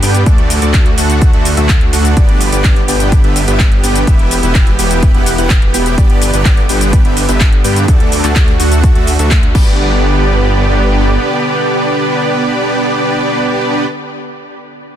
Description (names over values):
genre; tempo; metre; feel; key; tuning
EDM, festival progressive house; 126 BPM; 4/4; straight; G major; A4 = 440 Hz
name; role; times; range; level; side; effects
supersaw pad; sustained chords; 0.0-13.9 s; D3 to G4; -20 LUFS; right 2 dB; sidechain pumping
dense compressed supersaw; riff; 0.0-13.9 s; A3 to G5; -15 LUFS; right 1 dB; sidechain pumping, ping-pong delay
wide detuned saw bass; bass; 0.0-11.2 s; E1 to G2; -14 LUFS; equal; chorus, sidechain pumping
house drum kit; drums; 0.0-9.6 s; cabasa, crash cymbal, handclaps, hi-hat; -19 LUFS; equal; none
electronic kick drum; drums; 0.3-9.6 s; none; -10 LUFS; equal; none
room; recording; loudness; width
digital ambience; dense, heavily limited modern master; -9 LUFS; side -10 dB against mid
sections
0.0-9.8 A section; 9.8-13.6 B section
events
drop 0.0-9.8; band accent 9.3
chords
0.3 D; 2.2 G; 4.1 Em; 6.0 G; 7.9 D; 9.5 G